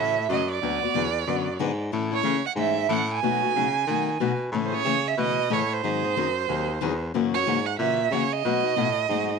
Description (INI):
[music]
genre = acoustic string swing (jazz manouche)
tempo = 184 BPM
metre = 4/4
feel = swing 60% on 8ths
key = unclear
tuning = A4 = 440 Hz
[part]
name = warm violin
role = melody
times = 0.0-9.4 s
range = C5 to G#5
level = -25 LUFS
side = right 12 dB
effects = none
[part]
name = picked steel-string acoustic guitar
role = accompaniment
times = 0.0-9.3 s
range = B2 to B4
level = -28 LUFS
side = left 13 dB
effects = none
[part]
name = warm baritone saxophone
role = bass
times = 0.0-9.4 s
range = D2 to D#3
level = -28 LUFS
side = left 1 dB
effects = none
[sound]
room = little or no reverb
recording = 1960s-style stereo with parts hard left and right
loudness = -22 LUFS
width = side -5 dB against mid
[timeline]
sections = 0.0-9.4 A section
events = none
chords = 0.0 A6; 0.6 D6; 1.9 A; 3.2 B7; 4.5 Amaj7; 5.8 G#7; 7.1 F#7; 8.4 B7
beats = 0.29 | 0.61 0.94 1.27 1.59 | 1.92 2.25 2.57 2.90 | 3.22 3.55 3.87 4.20 | 4.53 4.85 5.18 5.50 | 5.83 6.16 6.48 6.81 | 7.13 7.46 7.79 8.11 | 8.44 8.76 9.09